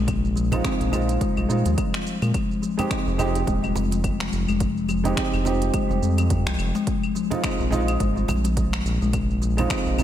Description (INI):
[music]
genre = organic downtempo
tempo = 106 BPM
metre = 4/4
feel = swing 57% on 16ths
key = unclear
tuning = A4 = 440 Hz
[part]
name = kalimba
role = arpeggios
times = 0.0-10.0 s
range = F3 to F4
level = -26 LUFS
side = left 4 dB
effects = diffuse ambient delay
[part]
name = round analog bass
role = bass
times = 0.0-10.0 s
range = Eb1 to Bb2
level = -24 LUFS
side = equal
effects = sidechain pumping
[part]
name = electronic kick drum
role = drums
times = 0.1-9.8 s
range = none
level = -28 LUFS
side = equal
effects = overdrive
[part]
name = organic electronic drum kit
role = drums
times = 0.1-10.0 s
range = claves, finger snaps, hi-hat, shaker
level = -32 LUFS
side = left 1 dB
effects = overdrive
[part]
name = felt-muted upright piano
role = accompaniment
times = 0.5-10.0 s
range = Ab3 to G4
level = -28 LUFS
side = right 3 dB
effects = sidechain pumping, diffuse ambient delay
[part]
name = cajon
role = percussion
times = 0.5-10.0 s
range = none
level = -33 LUFS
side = right 3 dB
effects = none
[sound]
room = light reverb, small room ambience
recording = none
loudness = -20 LUFS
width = side -11 dB against mid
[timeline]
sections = 0.0-10.0 A section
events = none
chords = 0.0 Bb7sus4; 2.3 Fm9; 6.9 Bb7sus4